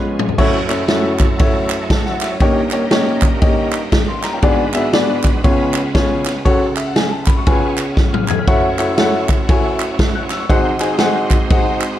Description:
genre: uptempo gospel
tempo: 119 BPM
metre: 4/4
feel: swing 62% on 8ths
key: F# minor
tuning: A4 = 440 Hz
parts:
  - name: clear upright piano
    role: accompaniment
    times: 0.0-12.0 s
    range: F#1 to G#6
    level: -17 LUFS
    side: left 1 dB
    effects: none
  - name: bright tonewheel organ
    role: sustained chords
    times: 0.0-12.0 s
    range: E#3 to B5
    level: -24 LUFS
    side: right 3 dB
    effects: slow rotary speaker, chorus vibrato
  - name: swinging big-band drum kit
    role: drums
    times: 0.2-11.9 s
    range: crash cymbal, kick drum, ride cymbal, snare drum, toms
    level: -16 LUFS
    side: equal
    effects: none
  - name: group handclap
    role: percussion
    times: 0.7-11.9 s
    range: none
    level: -26 LUFS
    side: right 7 dB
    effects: none
room: light reverb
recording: dark, warm production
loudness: -13 LUFS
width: side -12 dB against mid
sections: 0.4-12.0 A section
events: drum fill 0.0-0.4, 8.0-8.5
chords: 0.4 F#m7; 2.4 D#7/G; 4.4 G#m7b5; 5.4 C#7; 6.5 F#m/C#; 7.5 C#7; 8.5 F#m7; 10.5 G#7

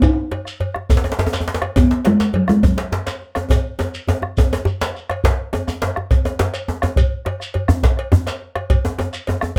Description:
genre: west african traditional, West African drum ensemble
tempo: 138 BPM (dotted quarters)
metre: 12/8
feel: straight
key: unclear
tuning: A4 = 441 Hz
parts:
  - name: talking drum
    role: melody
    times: 0.0-5.0 s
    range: F#3 to D#4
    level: -18 LUFS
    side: equal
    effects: none
  - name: bombo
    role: percussion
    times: 0.0-9.6 s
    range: none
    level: -20 LUFS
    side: equal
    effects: none
  - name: cowbell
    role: percussion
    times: 0.0-9.6 s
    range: none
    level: -32 LUFS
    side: equal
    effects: none
  - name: djembe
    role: percussion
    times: 0.0-9.6 s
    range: none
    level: -26 LUFS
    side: equal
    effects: none
  - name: shekere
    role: percussion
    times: 0.0-9.3 s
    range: none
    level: -31 LUFS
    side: equal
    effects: none
  - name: djembe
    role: percussion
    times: 0.9-9.6 s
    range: none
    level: -23 LUFS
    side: equal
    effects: none
room: light reverb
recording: close, detailed microphones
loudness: -19 LUFS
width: mono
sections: 0.0-5.2 A section; 5.2-9.6 B section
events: drum fill 3.5-5.2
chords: none

